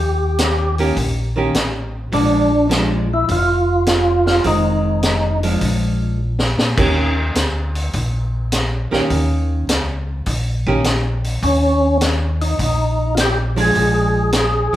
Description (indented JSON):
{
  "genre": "soul jazz organ trio",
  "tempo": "103 BPM",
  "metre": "4/4",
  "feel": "swing 69% on 8ths",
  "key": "unclear",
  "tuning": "A4 = 440 Hz",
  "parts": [
    { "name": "percussive tonewheel organ", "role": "melody", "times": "0.0-5.4, 11.4-14.8 s", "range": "Db4 to Ab4", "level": "-18 LUFS", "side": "equal", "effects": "slow rotary speaker, overdrive, chorus vibrato" },
    { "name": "mellow tonewheel organ", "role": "bass", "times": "0.0-14.8 s", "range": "F1 to Bb2", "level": "-20 LUFS", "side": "equal", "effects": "slow rotary speaker" },
    { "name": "vintage drum kit", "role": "drums", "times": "0.4-14.8 s", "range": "crash cymbal, hi-hat, kick drum, snare drum", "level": "-21 LUFS", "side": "equal", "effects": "none" },
    { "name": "archtop guitar, miked and amplified", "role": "accompaniment", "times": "0.8-14.8 s", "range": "Eb3 to G4", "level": "-21 LUFS", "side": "right 1 dB", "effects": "none" }
  ],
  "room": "wet large studio reverb, RT60 1.4 s",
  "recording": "band playing live in one room",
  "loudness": "-15 LUFS",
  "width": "side -13 dB against mid",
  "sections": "0.0-14.8 A section",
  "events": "drum fill 6.2-6.8",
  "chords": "0.0 Eb7; 2.1 Bb7; 4.5 Fm7; 5.6 Bb7; 6.8 Eb7; 13.8 Bb7"
}